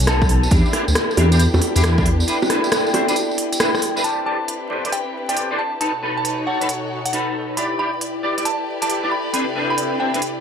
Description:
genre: UK garage, two-step garage.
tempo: 136 BPM.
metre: 4/4.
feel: swing 66% on 16ths.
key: A minor.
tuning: A4 = 444 Hz.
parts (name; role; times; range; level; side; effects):
warm studio violin section; sustained chords; 0.0-10.4 s; B3 to D5; -29 LUFS; left 2 dB; sidechain pumping, low-pass filter.
dark detuned saw bass; bass; 0.0-2.2 s; B1 to E2; -16 LUFS; equal; tube saturation.
garage drum kit; drums; 0.0-10.3 s; bongos, hi-hat, rim click; -22 LUFS; right 1 dB; none.
tambourine; percussion; 0.0-4.0 s; none; -28 LUFS; right 3 dB; none.
warbly tape-like pad; texture; 0.0-10.4 s; B2 to G#5; -27 LUFS; left 1 dB; chorus, built-in reverb, sidechain pumping.
clean electric guitar; stabs; 0.1-10.2 s; B3 to D5; -24 LUFS; equal; ensemble chorus, low-pass filter, ping-pong delay.
electronic kick drum; drums; 0.2-2.0 s; none; -18 LUFS; equal; overdrive.
soft synth bell; melody; 4.0-10.2 s; F#5 to B5; -25 LUFS; equal; chorus, ping-pong delay.
room: moderate digital room reverb, RT60 1.1 s, digital ambience.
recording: vinyl crackle.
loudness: -17 LUFS.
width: side -7 dB against mid.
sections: 0.0-4.0 A section; 4.0-10.4 B section.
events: break 2.3-4.0; band accent 3.6; filter sweep on violin section 4.0-10.4.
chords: 0.0 B7; 0.5 Em7; 2.3 Cmaj9 (rootless); 4.0 Am11; 5.8 B7; 7.6 Em7; 9.3 Cmaj9.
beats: 0.07 | 0.51 0.95 1.40 1.84 | 2.28 2.72 3.16 3.60 | 4.04 4.48 4.92 5.37 | 5.81 6.25 6.69 7.13 | 7.57 8.01 8.45 8.89 | 9.34 9.78 10.22.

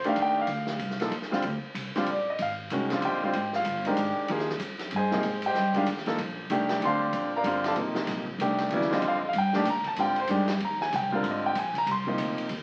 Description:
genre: modal jazz.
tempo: 190 BPM.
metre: 3/4.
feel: swing 62% on 8ths.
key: Bb mixolydian.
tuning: A4 = 439 Hz.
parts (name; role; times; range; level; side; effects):
clear concert grand piano; accompaniment; 0.0-12.5 s; C3 to C6; -29 LUFS; equal; none.
upright bass; bass; 0.0-12.6 s; G1 to Bb2; -37 LUFS; equal; none.
swinging big-band drum kit; drums; 0.0-12.6 s; hi-hat, kick drum, ride cymbal, snare drum; -38 LUFS; equal; none.
room: wet studio reverb, RT60 0.7 s.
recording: very old 78 rpm record, vinyl crackle.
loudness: -28 LUFS.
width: mono.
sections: 0.0-12.6 A section.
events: none.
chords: 0.0 Bbmaj9; 2.4 Abmaj9; 6.2 Bbmaj9; 10.0 Abmaj9.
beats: 0.18 | 0.49 0.81 1.12 | 1.44 1.76 2.07 | 2.39 2.71 3.02 | 3.34 3.65 3.97 | 4.29 4.60 4.92 | 5.24 5.55 5.87 | 6.18 6.50 6.82 | 7.13 7.45 7.76 | 8.08 8.40 8.71 | 9.03 9.35 9.66 | 9.98 10.29 10.61 | 10.93 11.24 11.56 | 11.87 12.19 12.51.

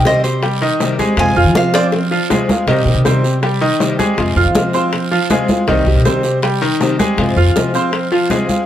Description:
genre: latin, Cuban son and guajira.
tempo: 160 BPM.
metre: 4/4.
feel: straight.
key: C minor.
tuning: A4 = 440 Hz.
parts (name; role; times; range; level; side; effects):
Cuban tres; melody; 0.0-1.9 s; C5 to Ab5; -19 LUFS; right 2 dB; none.
fingerpicked steel-string acoustic guitar; accompaniment; 0.0-8.7 s; C3 to G4; -19 LUFS; left 2 dB; none.
upright bass; bass; 0.0-8.2 s; C2 to F3; -17 LUFS; right 1 dB; none.
bright grand piano; arpeggios; 0.1-8.6 s; Eb3 to F6; -17 LUFS; right 1 dB; none.
bongos; percussion; 0.1-8.7 s; none; -22 LUFS; left 4 dB; none.
congas; percussion; 0.1-8.7 s; none; -20 LUFS; equal; none.
guiro; percussion; 0.1-8.7 s; none; -28 LUFS; right 6 dB; none.
room: light reverb.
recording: none.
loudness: -12 LUFS.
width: side -11 dB against mid.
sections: 0.0-2.7 A section; 2.7-8.7 B section.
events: Cuban tres solo 0.0-2.7; drum fill 1.7-2.7.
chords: 0.0 Cm; 1.2 Fm; 2.7 Cm; 4.2 Fm; 5.7 Cm; 7.2 Fm.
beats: 0.06 0.43 0.81 | 1.18 1.56 1.93 2.31 | 2.68 3.06 3.43 3.81 | 4.18 4.55 4.93 5.30 | 5.68 6.05 6.43 6.80 | 7.18 7.55 7.93 8.30.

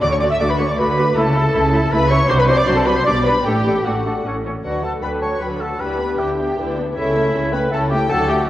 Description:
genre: quick classical-period movement for symphony orchestra.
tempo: 156 BPM.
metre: 3/4.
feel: straight.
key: D major.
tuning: A4 = 440 Hz.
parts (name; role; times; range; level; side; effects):
rich studio violin section; melody; 0.0-8.5 s; E5 to E6; -25 LUFS; left 2 dB; none.
mellow hollow concert flute; second line; 0.0-8.5 s; F#4 to A5; -25 LUFS; left 1 dB; none.
warm clarinet; second line; 0.0-8.5 s; E4 to C#5; -27 LUFS; equal; none.
warm oboe; second line; 0.0-8.5 s; E4 to E5; -28 LUFS; equal; none.
warm studio violin section; second line; 0.0-8.5 s; E4 to E5; -25 LUFS; left 1 dB; none.
warm studio viola section; accompaniment; 0.0-8.5 s; F#3 to F#4; -26 LUFS; equal; none.
dark French horn section; sustained chords; 0.0-8.5 s; F#3 to B4; -25 LUFS; left 1 dB; none.
warm trumpet; stabs; 0.0-4.2 s; F#4 to E5; -22 LUFS; right 1 dB; none.
rich studio double bass section; bass; 0.0-8.5 s; A1 to D2; -23 LUFS; right 1 dB; none.
warm studio cello section; bass; 0.0-8.4 s; A2 to D3; -25 LUFS; right 1 dB; none.
room: wet concert hall reverb, RT60 1.7 s.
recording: worn, warbling old tape, cassette tape, warbly pitch drift.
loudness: -15 LUFS.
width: side -14 dB against mid.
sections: 0.0-4.7 A section; 4.7-8.5 B section.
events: none.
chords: 0.0 D; 1.2 A/C#; 2.3 D7/C; 3.1 G/B; 3.5 D/A; 4.3 A; 4.7 D; 5.8 Em7/D; 7.0 A/C#.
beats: | 0.01 0.40 0.78 | 1.16 1.54 1.92 | 2.29 2.67 3.06 | 3.46 3.86 4.26 | 4.66 5.04 5.43 | 5.81 6.19 6.58 | 6.97 7.35 7.73 | 8.11 8.48.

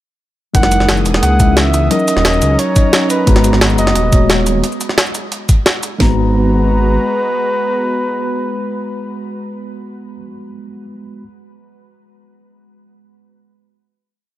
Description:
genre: liquid drum and bass.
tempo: 176 BPM.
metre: 4/4.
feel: straight.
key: G# minor.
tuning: A4 = 441 Hz.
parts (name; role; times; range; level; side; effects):
breathy flugelhorn; melody; 0.5-9.5 s; B4 to F#5; -19 LUFS; equal; tape echo.
mellow tine electric piano; accompaniment; 0.5-11.2 s; F#3 to A#5; -19 LUFS; equal; slow stereo tremolo, tape echo.
warm analog pad; sustained chords; 0.5-9.5 s; E3 to D#6; -24 LUFS; left 1 dB; chorus, sidechain pumping.
dark detuned saw bass; bass; 0.5-7.0 s; D#1 to C#2; -15 LUFS; equal; none.
drum and bass drum kit; drums; 0.5-6.1 s; kick drum, snare drum; -11 LUFS; equal; none.
jungle sampler-style drum kit; drums; 0.5-5.9 s; hi-hat, shaker, snare drum; -16 LUFS; equal; none.
room: digital ambience.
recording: none.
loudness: -11 LUFS.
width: side -14 dB against mid.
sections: 0.5-6.0 drop; 6.0-8.7 final chord.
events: drop 0.5-6.0.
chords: 0.5 F#13; 1.9 D#m7; 3.3 G#m9; 4.6 N.C.; 6.0 G#m9.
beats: | 0.55 0.89 1.23 1.57 | 1.91 2.25 2.59 2.93 | 3.27 3.62 3.96 4.30 | 4.64 4.98 5.32 5.66 | 6.00 6.34 6.68 7.02 | 7.37 7.71 8.05 8.39.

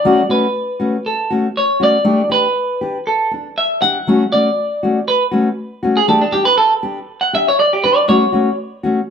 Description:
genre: highlife.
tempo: 120 BPM.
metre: 4/4.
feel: straight.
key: unclear.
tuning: A4 = 441 Hz.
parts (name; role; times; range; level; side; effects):
semi-hollow electric guitar; melody; 0.0-8.6 s; D4 to F#5; -15 LUFS; right 1 dB; spring reverb.
fingerpicked steel-string acoustic guitar; accompaniment; 0.0-9.0 s; F#3 to G4; -16 LUFS; left 2 dB; none.
room: wet small room reverb, RT60 0.5 s.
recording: band playing live in one room.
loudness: -13 LUFS.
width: side -7 dB against mid.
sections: 0.0-9.1 A section.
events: clean electric guitar solo 0.0-9.1.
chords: 0.1 F#madd11; 2.1 G5; 4.1 Dmaj7; 6.1 G5; 8.1 F#m.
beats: | 0.05 0.56 1.06 1.56 | 2.06 2.57 3.07 3.57 | 4.08 4.58 5.08 5.58 | 6.08 6.58 7.08 7.59 | 8.09 8.59.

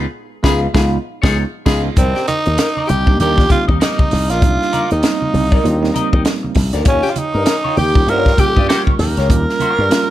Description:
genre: funk.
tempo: 98 BPM.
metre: 4/4.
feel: swing 60% on 16ths.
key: unclear.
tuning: A4 = 440 Hz.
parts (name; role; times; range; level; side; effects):
clean electric guitar; accompaniment; 0.0-10.0 s; Eb4 to Eb5; -24 LUFS; left 4 dB; wah, plate reverb.
bell-like tine electric piano; stabs; 0.0-10.1 s; G3 to F4; -22 LUFS; right 3 dB; medium stereo tremolo, plate reverb.
slap bass with an envelope filter; bass; 0.0-9.9 s; Bb1 to G2; -17 LUFS; left 1 dB; none.
compact cocktail drum kit; drums; 0.4-10.1 s; crash cymbal, hi-hat, kick drum, snare drum; -16 LUFS; equal; none.
warm tenor saxophone; second line; 0.5-8.5 s; F4 to Bb4; -24 LUFS; left 5 dB; plate reverb.
growling tenor saxophone; melody; 2.0-10.1 s; C4 to Bb4; -18 LUFS; right 2 dB; plate reverb, analog delay.
congas; percussion; 2.0-9.8 s; none; -26 LUFS; right 4 dB; none.
room: light reverb.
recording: none.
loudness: -12 LUFS.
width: side -13 dB against mid.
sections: 0.0-2.0 A section; 2.0-10.1 B section.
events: band accent 0.0-2.0.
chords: 0.0 Db9; 2.0 Cm9; 6.9 Eb9.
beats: 0.14 0.75 1.36 | 1.97 2.58 3.19 3.81 | 4.42 5.03 5.64 6.25 | 6.86 7.47 8.08 8.69 | 9.30 9.91.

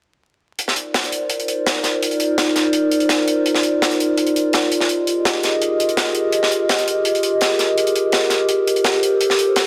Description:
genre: drum and bass, jungle.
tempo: 167 BPM.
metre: 4/4.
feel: straight.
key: C minor.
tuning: A4 = 440 Hz.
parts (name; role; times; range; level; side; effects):
warbly tape-like pad; sustained chords; 0.8-9.7 s; Eb4 to Eb5; -20 LUFS; equal; chorus, built-in reverb, vintage 12-bit sampler grit.
tight funk drum kit; drums; 0.6-9.7 s; hi-hat, snare drum; -22 LUFS; equal; high-pass filter on hats, high-pass filter on snare, high-pass filter on room.
room: moderate lush hall reverb, RT60 2.1 s.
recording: dense, heavily limited modern master, vinyl crackle.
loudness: -18 LUFS.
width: mono.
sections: 0.6-9.7 A section.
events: none.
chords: 0.6 Cm11; 4.9 Fm11; 8.5 Gm11.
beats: | 0.58 0.94 1.30 1.66 | 2.02 2.38 2.74 3.10 | 3.46 3.82 4.18 4.54 | 4.89 5.25 5.61 5.97 | 6.33 6.69 7.05 7.41 | 7.77 8.13 8.49 8.85 | 9.21 9.57.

